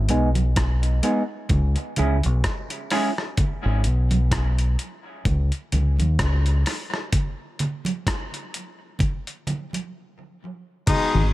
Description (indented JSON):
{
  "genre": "dub reggae",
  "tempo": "64 BPM",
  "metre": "4/4",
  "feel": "swing 56% on 16ths",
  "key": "unclear",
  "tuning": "A4 = 441 Hz",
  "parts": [
    { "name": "deep dub fingered electric bass", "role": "bass", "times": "0.0-11.3 s", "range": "G#1 to D#2", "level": "-20 LUFS", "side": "equal", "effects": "none" },
    { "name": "semi-hollow electric guitar", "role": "accompaniment", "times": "0.1-3.1 s", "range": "G#3 to G#4", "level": "-27 LUFS", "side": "right 1 dB", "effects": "low-pass filter, dub echo" },
    { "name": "dusty soul sampler-style drum kit", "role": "drums", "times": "0.1-11.1 s", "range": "crash cymbal, hi-hat, kick drum, rim click", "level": "-25 LUFS", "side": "equal", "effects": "overdrive" },
    { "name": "congas", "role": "percussion", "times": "0.4-11.1 s", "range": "none", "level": "-30 LUFS", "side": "right 3 dB", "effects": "dub echo" },
    { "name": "clear trombone section", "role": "second line", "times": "10.9-11.3 s", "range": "B2 to D#4", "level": "-22 LUFS", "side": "left 3 dB", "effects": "none" },
    { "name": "mellow tonewheel organ", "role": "accompaniment", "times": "11.1-11.2 s", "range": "G#2 to D#3", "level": "-24 LUFS", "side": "left 4 dB", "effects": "slow rotary speaker" }
  ],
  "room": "digital ambience",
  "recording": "none",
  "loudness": "-20 LUFS",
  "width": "side -16 dB against mid",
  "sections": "0.0-10.9 A section",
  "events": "break 3.4-10.9",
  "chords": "0.0 G#m; 1.5 C#m; 3.4 N.C."
}